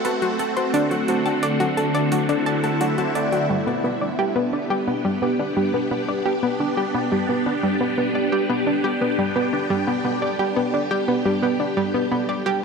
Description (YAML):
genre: ambient, sequencer-driven space music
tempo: 87 BPM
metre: 4/4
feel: straight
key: unclear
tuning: A4 = 440 Hz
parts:
  - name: phased string machine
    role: sustained chords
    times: 0.0-12.6 s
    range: D3 to G4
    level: -23 LUFS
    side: equal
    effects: ensemble chorus, phaser
  - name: concert harp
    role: arpeggios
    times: 0.0-12.6 s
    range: G3 to F#5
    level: -32 LUFS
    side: left 1 dB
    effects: none
  - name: analog pluck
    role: riff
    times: 0.0-12.6 s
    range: G3 to A5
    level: -22 LUFS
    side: equal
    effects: chorus, ping-pong delay
  - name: electronic hi-hat and woodblock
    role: percussion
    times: 0.0-3.5 s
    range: none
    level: -38 LUFS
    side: right 1 dB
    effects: ping-pong delay
  - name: pulsing gated texture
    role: texture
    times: 0.0-12.6 s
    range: A4 to A5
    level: -36 LUFS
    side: right 2 dB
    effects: none
room: wet huge ambient reverb, RT60 7.5 s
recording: none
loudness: -19 LUFS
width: side -5 dB against mid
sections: 0.0-3.5 A section; 3.5-12.6 B section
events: none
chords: 0.0 F#dim; 0.7 D7; 3.5 G